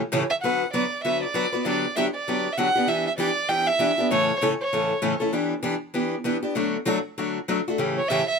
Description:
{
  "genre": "jazz",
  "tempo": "195 BPM",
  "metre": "4/4",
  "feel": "swing 61% on 8ths",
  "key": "D major",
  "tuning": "A4 = 439 Hz",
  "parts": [
    { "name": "picked steel-string acoustic guitar", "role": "accompaniment", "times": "0.1-8.2 s", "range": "A2 to B4", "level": "-24 LUFS", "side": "left 1 dB", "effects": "none" },
    { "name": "rich violin", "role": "melody", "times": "0.3-5.2, 8.0-8.4 s", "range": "C#5 to G5", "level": "-24 LUFS", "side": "right 2 dB", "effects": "none" }
  ],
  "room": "light reverb",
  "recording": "close, detailed microphones",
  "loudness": "-22 LUFS",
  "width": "side -5 dB against mid",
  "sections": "0.4-8.4 A section",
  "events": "none",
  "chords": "0.4 D6; 1.6 Gmaj7/D; 2.9 Em7; 4.1 A; 5.3 Em7; 6.6 D; 7.8 A7",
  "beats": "0.11 | 0.42 0.72 1.03 1.34 | 1.65 1.95 2.26 2.57 | 2.87 3.18 3.49 3.80 | 4.10 4.41 4.72 5.03 | 5.33 5.64 5.95 6.26 | 6.56 6.87 7.18 7.49 | 7.79 8.10"
}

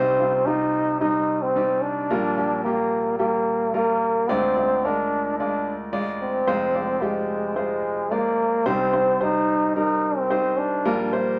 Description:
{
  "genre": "pop",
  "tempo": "110 BPM",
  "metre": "4/4",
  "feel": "straight",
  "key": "C minor",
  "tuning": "A4 = 436 Hz",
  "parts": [
    { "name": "growling trombone", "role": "melody", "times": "0.0-11.1 s", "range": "Ab3 to Eb4", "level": "-24 LUFS", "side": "equal", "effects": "none" },
    { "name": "clear concert grand piano", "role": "accompaniment", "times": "0.0-11.4 s", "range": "F1 to Eb5", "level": "-28 LUFS", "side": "equal", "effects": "none" }
  ],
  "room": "wet studio ambience, RT60 0.5 s",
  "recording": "none",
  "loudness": "-23 LUFS",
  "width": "mono",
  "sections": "0.0-11.4 A section",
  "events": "none",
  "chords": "0.0 Cm; 2.1 Gm7/Bb; 4.3 Ddim; 6.5 Fm; 8.7 Cm; 10.8 Gm7/Bb",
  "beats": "0.46 1.01 1.56 | 2.10 2.65 3.20 3.74 | 4.29 4.84 5.38 5.93 | 6.48 7.02 7.57 8.12 | 8.66 9.21 9.76 10.30 | 10.85"
}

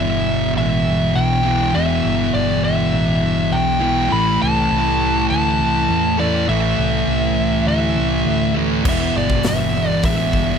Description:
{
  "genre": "stoner and doom metal",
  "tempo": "101 BPM",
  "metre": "4/4",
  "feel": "straight",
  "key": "E minor",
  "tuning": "A4 = 440 Hz",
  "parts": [
    { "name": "fuzz lead guitar", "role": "melody", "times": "0.0-10.6 s", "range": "D5 to B5", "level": "-21 LUFS", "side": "left 1 dB", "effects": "distortion, tape echo" },
    { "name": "thick fuzz guitar", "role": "riff", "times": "0.0-10.6 s", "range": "E2 to A3", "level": "-21 LUFS", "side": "left 12 dB", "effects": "distortion" },
    { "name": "thick fuzz guitar", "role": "riff", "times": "0.0-10.6 s", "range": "E2 to A3", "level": "-21 LUFS", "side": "right 11 dB", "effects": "distortion" },
    { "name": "hollow-body short-scale fingered electric bass", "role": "bass", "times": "0.0-10.6 s", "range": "E1 to E2", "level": "-23 LUFS", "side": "equal", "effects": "overdrive" },
    { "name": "big rock drum kit", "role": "drums", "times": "8.9-10.5 s", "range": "crash cymbal, hi-hat, kick drum, snare drum", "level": "-22 LUFS", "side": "equal", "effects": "none" }
  ],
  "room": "light reverb, small room ambience",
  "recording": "none",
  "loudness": "-15 LUFS",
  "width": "side -7 dB against mid",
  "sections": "0.0-10.6 A section",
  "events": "none",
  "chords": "0.0 Em; 4.1 Am; 8.9 Em",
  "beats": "0.55 1.15 | 1.74 2.33 2.92 3.52 | 4.11 4.70 5.29 5.89 | 6.48 7.07 7.67 8.26 | 8.85 9.44 10.04"
}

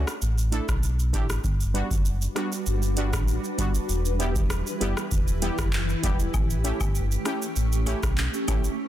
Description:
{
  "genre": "dancehall",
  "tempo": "98 BPM",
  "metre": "4/4",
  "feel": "straight",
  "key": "unclear",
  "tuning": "A4 = 440 Hz",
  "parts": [
    { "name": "synth brass stab", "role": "accompaniment", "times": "0.0-8.6 s", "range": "G3 to A4", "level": "-32 LUFS", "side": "right 1 dB", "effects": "chorus" },
    { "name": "sub bass with octave", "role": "bass", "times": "0.0-8.6 s", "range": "E1 to B1", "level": "-26 LUFS", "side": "equal", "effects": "none" },
    { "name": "booming analog drum machine", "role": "drums", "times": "0.1-8.8 s", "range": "handclaps, hi-hat, kick drum, rim click, shaker", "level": "-27 LUFS", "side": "equal", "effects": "none" },
    { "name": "granular cloud pad", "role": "sustained chords", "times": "2.2-8.9 s", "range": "E3 to B4", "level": "-32 LUFS", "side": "equal", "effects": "built-in reverb, sidechain pumping" },
    { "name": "woodblock and cabasa", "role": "percussion", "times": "6.3-8.6 s", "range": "none", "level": "-39 LUFS", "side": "left 8 dB", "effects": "none" },
    { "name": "swell", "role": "sound effects", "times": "8.9 s", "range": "none", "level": "-50 LUFS", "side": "left 3 dB", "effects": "none" }
  ],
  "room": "digital ambience",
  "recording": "dense, heavily limited modern master",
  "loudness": "-23 LUFS",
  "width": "side -12 dB against mid",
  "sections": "0.0-1.4 A section; 1.4-8.9 B section",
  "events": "none",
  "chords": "0.2 Asus4; 1.4 Gmaj7; 3.9 Em; 6.3 A7",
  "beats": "0.22 0.83 | 1.44 2.05 2.67 3.28 | 3.89 4.50 5.11 5.73 | 6.34 6.95 7.56 8.18 | 8.79"
}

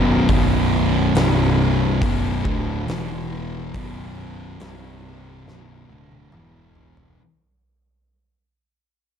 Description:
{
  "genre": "stoner and doom metal",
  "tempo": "70 BPM",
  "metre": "4/4",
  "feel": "straight",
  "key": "B minor",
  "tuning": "A4 = 436 Hz",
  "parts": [
    { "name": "thick fuzz guitar", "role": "riff", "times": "0.0-7.2 s", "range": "B1 to E3", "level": "-24 LUFS", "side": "left 7 dB", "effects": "distortion" },
    { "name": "thick fuzz guitar", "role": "riff", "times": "0.0-7.2 s", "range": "B1 to E3", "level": "-24 LUFS", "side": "right 8 dB", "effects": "distortion" },
    { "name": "fuzz picked electric bass", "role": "bass", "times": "0.0-7.2 s", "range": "B0 to E1", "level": "-25 LUFS", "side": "equal", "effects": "overdrive, tube saturation" },
    { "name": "oversized low-tuned drum kit", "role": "drums", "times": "0.3-7.2 s", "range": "hi-hat, kick drum, snare drum, toms", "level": "-25 LUFS", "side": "equal", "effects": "none" }
  ],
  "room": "light reverb, small room ambience",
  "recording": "dark, warm production",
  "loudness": "-17 LUFS",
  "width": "side -8 dB against mid",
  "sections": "0.0-7.2 A section",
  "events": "fade-out 0.0-7.2; drum fill 5.5-7.2",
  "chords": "0.0 B5; 1.2 C5; 2.0 Bm; 2.9 E5; 3.7 B5; 4.6 C5; 5.5 Bm; 6.3 E5",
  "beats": "| 0.29 1.16 2.02 2.88 | 3.75 4.61 5.47 6.33"
}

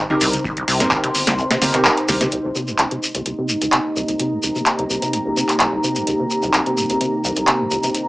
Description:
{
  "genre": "acid house",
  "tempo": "128 BPM",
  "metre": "4/4",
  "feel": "straight",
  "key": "C minor",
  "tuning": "A4 = 439 Hz",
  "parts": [
    { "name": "deep acid bass", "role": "riff", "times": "0.0-7.9 s", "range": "C2 to C3", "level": "-25 LUFS", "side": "equal", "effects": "lush chorus, tape echo" },
    { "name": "deep dark ambient pad", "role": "texture", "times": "0.0-8.1 s", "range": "Eb4 to C6", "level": "-24 LUFS", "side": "equal", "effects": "chorus, built-in reverb, sidechain pumping" },
    { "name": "deep mellow chord stab", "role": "stabs", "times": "0.1-2.3 s", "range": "C4 to Bb4", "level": "-22 LUFS", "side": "equal", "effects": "chorus, tape echo" },
    { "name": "booming analog drum machine", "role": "drums", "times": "0.1-8.0 s", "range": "finger snaps, handclaps, hi-hat, snare drum, toms", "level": "-18 LUFS", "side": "equal", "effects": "none" },
    { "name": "saturated sub bass", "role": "bass", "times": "0.2-2.2 s", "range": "G1 to C2", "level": "-28 LUFS", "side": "equal", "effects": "tube saturation, sidechain pumping" },
    { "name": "shekere", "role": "percussion", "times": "0.2-8.0 s", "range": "none", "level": "-25 LUFS", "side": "equal", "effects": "none" },
    { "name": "electronic kick drum", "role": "drums", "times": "0.4-1.0 s", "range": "none", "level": "-31 LUFS", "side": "equal", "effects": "none" },
    { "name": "warm analog pad", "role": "sustained chords", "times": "2.3-8.1 s", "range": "C3 to G4", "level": "-25 LUFS", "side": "equal", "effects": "chorus, sidechain pumping" }
  ],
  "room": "wet studio reverb, RT60 0.6 s",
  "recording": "small speaker sound",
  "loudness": "-16 LUFS",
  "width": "side -20 dB against mid",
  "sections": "0.0-2.3 A section; 2.3-8.1 B section",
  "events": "drop 0.0-2.3; kick drops out 1.4-2.3; band accent 1.9",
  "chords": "0.0 Cm7",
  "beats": "| 0.45 0.91 1.38 1.85 | 2.32 2.79 3.26 3.73 | 4.20 4.66 5.13 5.60 | 6.07 6.54 7.01 7.48 | 7.95"
}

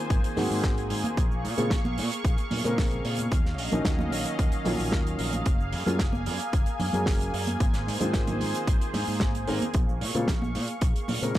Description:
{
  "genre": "nu-disco, nu disco",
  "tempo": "112 BPM",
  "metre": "4/4",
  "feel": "straight",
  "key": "Bb minor",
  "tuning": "A4 = 440 Hz",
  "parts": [
    { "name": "dark concert grand piano", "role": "accompaniment", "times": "0.0-11.4 s", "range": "Db3 to Bb4", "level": "-30 LUFS", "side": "left 1 dB", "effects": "sidechain pumping, tape echo" },
    { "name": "lush unison pad", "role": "sustained chords", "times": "0.0-11.4 s", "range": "Gb3 to Db6", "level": "-33 LUFS", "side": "equal", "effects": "chorus, phaser, vintage 12-bit sampler grit, sidechain pumping" },
    { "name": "fingered electric bass", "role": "bass", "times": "0.1-11.4 s", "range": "Gb1 to Bb2", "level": "-31 LUFS", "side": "equal", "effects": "none" },
    { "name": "damped 70s drum kit", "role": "drums", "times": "0.1-11.4 s", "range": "hi-hat, shaker, snare drum", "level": "-33 LUFS", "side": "right 2 dB", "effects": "small room ambience" },
    { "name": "electronic kick drum", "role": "drums", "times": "0.1-11.4 s", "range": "none", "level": "-25 LUFS", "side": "equal", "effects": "small room ambience" },
    { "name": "congas", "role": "percussion", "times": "0.4-11.2 s", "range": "none", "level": "-35 LUFS", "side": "right 2 dB", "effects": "none" }
  ],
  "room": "small room ambience",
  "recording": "dry, gritty hardware recording, transformer saturation",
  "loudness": "-24 LUFS",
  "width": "side -14 dB against mid",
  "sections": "0.0-11.4 A section",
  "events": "none",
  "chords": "0.0 Ab9; 1.2 Bbm7; 3.3 Ebm9; 5.5 Gbmaj9; 7.6 Abadd9; 9.7 Bbm7",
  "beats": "0.10 0.64 | 1.18 1.71 2.25 2.78 | 3.32 3.85 4.39 4.93 | 5.46 6.00 6.53 7.07 | 7.60 8.14 8.68 9.21 | 9.75 10.28 10.82 11.35"
}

